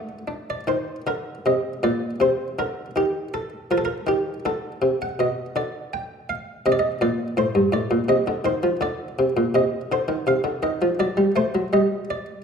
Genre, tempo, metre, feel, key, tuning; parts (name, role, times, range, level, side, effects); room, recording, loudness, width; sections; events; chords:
classical, baroque-style suite movement for harpsichord; 81 BPM; 3/4; rubato; A4 = 440 Hz
buff-stop harpsichord; solo; 0.0-12.4 s; G2 to G5; -21 LUFS; equal
wet recital hall reverb, RT60 1.6 s; minimal, uncompressed stereo recording; -21 LUFS; side -6 dB against mid
0.7-12.4 A section
0.0 D5; 0.7 Eb5; 2.9 Ebadd9; 4.4 D5; 5.2 Bdim; 6.6 Bbadd9; 7.4 F7 (rootless); 8.8 Bb/D; 9.5 Cm; 11.0 D7/F#; 11.7 G5